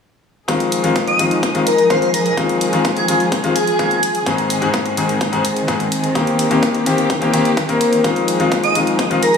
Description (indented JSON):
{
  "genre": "EDM, festival progressive house",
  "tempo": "127 BPM",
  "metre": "4/4",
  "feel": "straight",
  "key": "F minor",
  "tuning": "A4 = 443 Hz",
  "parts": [
    { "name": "bright grand piano", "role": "accompaniment", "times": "0.5-9.2 s", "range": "Ab2 to Bb4", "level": "-17 LUFS", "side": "left 3 dB", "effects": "vintage 12-bit sampler grit, sidechain pumping, tape echo" },
    { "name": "dark studio string section", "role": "sustained chords", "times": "0.5-9.4 s", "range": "Eb3 to Ab4", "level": "-22 LUFS", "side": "right 1 dB", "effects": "sidechain pumping" },
    { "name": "electronic hi-hat", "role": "drums", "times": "0.5-9.4 s", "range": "none", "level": "-26 LUFS", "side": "right 1 dB", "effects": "small room reverb" },
    { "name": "electronic kick drum", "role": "drums", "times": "0.5-9.1 s", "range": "none", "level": "-23 LUFS", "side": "equal", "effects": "high-pass filter on kick, small room reverb, high-pass filter on room" },
    { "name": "airy dreamy lead", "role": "melody", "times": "1.1-4.0, 8.6-9.4 s", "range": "Ab4 to Eb5", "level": "-18 LUFS", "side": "equal", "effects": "chorus, phaser, tape echo" }
  ],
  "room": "light reverb, small room ambience",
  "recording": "studio reverb",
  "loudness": "-14 LUFS",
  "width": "side -6 dB against mid",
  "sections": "0.5-9.4 A section",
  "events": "none",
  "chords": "0.5 Fm7; 4.3 Ab; 6.2 Eb6; 8.0 Fm7"
}